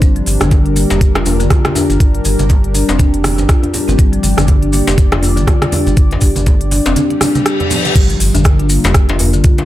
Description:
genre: afro house.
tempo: 121 BPM.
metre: 4/4.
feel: swing 58% on 16ths.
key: G minor.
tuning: A4 = 438 Hz.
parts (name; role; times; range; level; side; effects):
warm analog pad; sustained chords; 0.0-9.7 s; G3 to D5; -20 LUFS; equal; chorus, sidechain pumping.
marimba with soft mallets; arpeggios; 0.0-9.5 s; D3 to G4; -18 LUFS; left 2 dB; sidechain pumping, ping-pong delay.
warm sub bass; bass; 0.0-9.4 s; F1 to G1; -16 LUFS; equal; tube saturation, sidechain pumping.
afro-pop drum kit; drums; 0.0-9.7 s; crash cymbal, hi-hat, rim click; -20 LUFS; equal; none.
electronic kick drum; drums; 0.0-9.6 s; none; -10 LUFS; equal; none.
maracas; percussion; 0.0-9.6 s; none; -25 LUFS; left 2 dB; none.
congas; percussion; 0.3-7.9 s; none; -22 LUFS; right 3 dB; none.
djembe; percussion; 0.4-9.7 s; none; -20 LUFS; left 2 dB; none.
reverse cymbal and impact; sound effects; 7.3-9.7 s; none; -21 LUFS; left 2 dB; none.
room: small room ambience.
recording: none.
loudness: -10 LUFS.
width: side -14 dB against mid.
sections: 0.0-8.0 A section; 8.0-9.7 B section.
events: reverse cymbal 7.3-8.0; drop 8.0-9.7; impact 8.0-9.7.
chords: 0.0 Gm7.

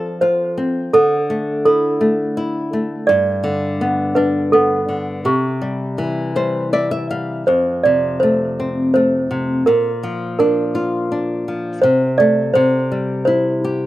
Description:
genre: children's music, lullaby.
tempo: 83 BPM.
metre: 3/4.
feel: straight.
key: F major.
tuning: A4 = 440 Hz.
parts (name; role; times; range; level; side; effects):
toy piano; melody; 0.0-13.9 s; G4 to D5; -16 LUFS; right 2 dB; none.
flamenco guitar; accompaniment; 0.0-13.9 s; F2 to F5; -19 LUFS; left 1 dB; slapback echo.
room: little or no reverb.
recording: recorded outdoors, with no room sound.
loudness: -15 LUFS.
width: side -15 dB against mid.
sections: 0.0-13.9 A section.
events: nylon-string guitar fill 6.0-7.5.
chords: 0.0 F; 0.9 Dsus2; 3.1 G; 5.3 C; 7.5 F; 9.7 Bb; 11.8 Amadd11/C; 12.6 C.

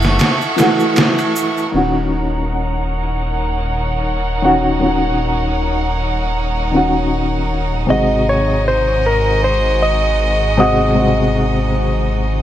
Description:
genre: trip hop.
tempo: 78 BPM.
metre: 4/4.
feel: swing 57% on 16ths.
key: Eb dorian.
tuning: A4 = 440 Hz.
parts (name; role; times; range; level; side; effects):
dark upright piano; accompaniment; 0.0-12.4 s; C3 to Gb4; -18 LUFS; left 1 dB; tremolo, tape echo.
clear studio violin section; sustained chords; 0.0-12.4 s; Ab3 to Db6; -21 LUFS; right 1 dB; low-pass filter.
dark detuned saw bass; bass; 0.0-12.4 s; Eb1 to Ab1; -19 LUFS; equal; none.
trip hop sampler-style drum kit; drums; 0.0-1.3 s; ride cymbal, snare drum; -18 LUFS; right 1 dB; overdrive.
egg shaker; percussion; 0.0-1.7 s; none; -31 LUFS; right 3 dB; none.
clean lap steel guitar; melody; 7.9-12.4 s; Bb4 to Eb5; -17 LUFS; equal; tape echo.
room: light reverb, small room ambience.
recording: none.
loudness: -14 LUFS.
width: side -11 dB against mid.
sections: 0.0-1.7 A section; 1.7-12.4 B section.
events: filter sweep on violin section 1.7-12.4.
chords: 0.0 Gbm7; 1.7 Ebm7; 7.9 Ab7.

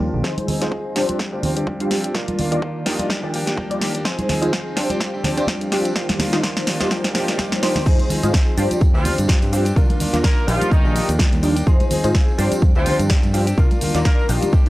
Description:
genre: filtered disco house.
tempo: 126 BPM.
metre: 4/4.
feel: swing 56% on 16ths.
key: unclear.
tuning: A4 = 442 Hz.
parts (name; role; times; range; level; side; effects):
funky polysynth comp; accompaniment; 0.0-14.7 s; Eb3 to D5; -23 LUFS; equal; chorus, phaser, sidechain pumping, low-pass filter.
direct-recorded clean electric guitar; riff; 0.0-14.7 s; Eb3 to Ab4; -27 LUFS; equal; sidechain pumping, low-pass filter.
fingered electric bass; bass; 0.0-14.4 s; Bb1 to Ab2; -24 LUFS; equal; sidechain pumping, high-pass filter, low-pass filter.
tambourine and congas; percussion; 0.1-14.7 s; none; -27 LUFS; right 1 dB; sidechain pumping on perc, low-pass filter on perc.
electronic kick drum; drums; 0.2-14.6 s; none; -17 LUFS; equal; high-pass filter on kick, small room ambience.
house drum kit; drums; 0.2-14.7 s; crash cymbal, hi-hat, shaker, snare drum; -24 LUFS; equal; small room ambience, sidechain pumping on hats, sidechain pumping on cymbals, sidechain pumping on perc.
clear horn section; melody; 8.9-14.3 s; Eb3 to Bb4; -26 LUFS; right 1 dB; sidechain pumping, low-pass filter, tape echo.
room: little or no reverb.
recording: dry, gritty hardware recording, cassette tape.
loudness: -16 LUFS.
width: side -17 dB against mid.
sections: 0.2-7.9 A section; 7.9-14.7 B section.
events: build-up 0.2-7.9; drum fill 0.2-7.9; filter sweep 0.2-7.9; drop 7.9-14.7.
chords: 0.2 Fm7; 1.0 G7sus4; 2.1 Cm11 (rootless); 3.1 Ebmaj9; 4.1 Fm7; 4.8 G7sus4; 6.0 Cm11; 7.9 Fm7; 8.6 G7sus4; 9.8 Cm11 (rootless); 10.7 Ebmaj9; 11.7 Fm7; 12.4 G7sus4; 13.6 Cm11 (rootless).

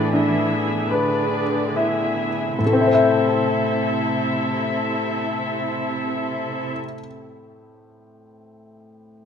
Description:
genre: classical, romantic movement for piano and orchestra.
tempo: 39 BPM.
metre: 4/4.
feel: rubato.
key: A minor.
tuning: A4 = 440 Hz.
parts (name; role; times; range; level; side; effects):
clear baby grand piano; melody; 0.0-9.3 s; A2 to E5; -21 LUFS; left 2 dB; none.
muted studio violin section; second line; 0.0-6.7 s; G#4 to E5; -27 LUFS; left 4 dB; none.
muted studio viola section; accompaniment; 0.0-6.7 s; B3 to G#4; -26 LUFS; right 3 dB; none.
muted studio cello section; bass; 0.0-6.7 s; C3 to E3; -30 LUFS; right 3 dB; none.
timpani; percussion; 2.6-6.7 s; A2; -30 LUFS; right 1 dB; none.
room: light reverb.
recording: close, detailed microphones.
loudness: -19 LUFS.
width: side -7 dB against mid.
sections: 0.0-2.6 A section; 2.6-8.8 B section.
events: slowing down 0.0-2.6.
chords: 0.0 E7/A; 2.6 Am.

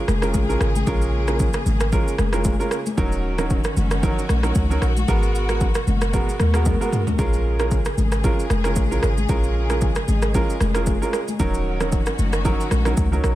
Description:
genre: afrobeats.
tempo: 114 BPM.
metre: 4/4.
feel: swing 55% on 16ths.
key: unclear.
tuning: A4 = 438 Hz.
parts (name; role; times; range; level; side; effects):
clear grand piano; accompaniment; 0.0-13.3 s; Gb3 to Bb4; -26 LUFS; right 3 dB; none.
warm studio string section; sustained chords; 0.0-13.3 s; Cb3 to Bb4; -30 LUFS; left 2 dB; none.
clean 808-style bass; bass; 0.1-13.3 s; Eb1 to Eb2; -21 LUFS; equal; none.
deep house drum kit; drums; 0.1-13.3 s; kick drum, rim click, shaker, toms; -23 LUFS; equal; overdrive.
congas; percussion; 0.1-13.1 s; none; -29 LUFS; left 4 dB; none.
room: little or no reverb.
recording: none.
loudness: -18 LUFS.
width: side -15 dB against mid.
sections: 0.0-13.3 A section.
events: drum fill 6.7-7.2.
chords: 0.0 Bbm7; 3.0 Ebm7; 5.1 Abm9; 7.2 Bbm7; 11.4 Ebm7.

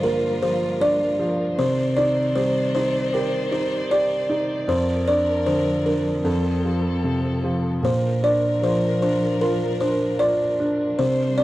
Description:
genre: children's music, lullaby.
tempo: 77 BPM.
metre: 4/4.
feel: straight.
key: Bb major.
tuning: A4 = 441 Hz.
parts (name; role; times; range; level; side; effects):
buzzing kalimba; melody; 0.0-11.4 s; A4 to D5; -22 LUFS; equal; none.
felt-muted upright piano; accompaniment; 0.0-11.4 s; F2 to G4; -23 LUFS; equal; none.
rich chamber string section; sustained chords; 0.0-11.4 s; Eb3 to D5; -29 LUFS; left 3 dB; none.
room: little or no reverb.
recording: dry, close 1970s-style studio recording.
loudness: -19 LUFS.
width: side -16 dB against mid.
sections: 0.0-11.4 A section.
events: none.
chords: 0.0 Gm7; 1.6 Cmadd9; 4.7 Bb/F; 6.2 F; 7.8 Bb.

